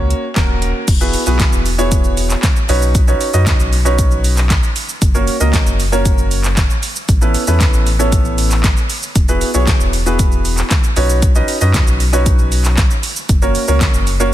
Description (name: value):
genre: dance-pop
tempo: 116 BPM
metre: 4/4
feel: straight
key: B major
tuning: A4 = 441 Hz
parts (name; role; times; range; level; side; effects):
- warm baby grand piano; accompaniment; 0.0-14.3 s; A#3 to F#5; -19 LUFS; right 1 dB; sidechain pumping
- sub bass with octave; bass; 0.0-14.3 s; D#1 to F#2; -16 LUFS; equal; sidechain pumping
- pop drum kit; drums; 0.1-14.3 s; crash cymbal, handclaps, hi-hat, kick drum, shaker, snare drum; -15 LUFS; equal; none
room: digital ambience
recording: dense, heavily limited modern master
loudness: -12 LUFS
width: side -13 dB against mid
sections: 0.9-14.3 A section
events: grand piano fill 0.1-0.9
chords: 0.0 F#; 0.9 Eadd9; 2.7 Badd9; 5.0 F#; 7.1 Aadd9; 9.2 Eadd9; 11.0 Badd9; 13.3 F#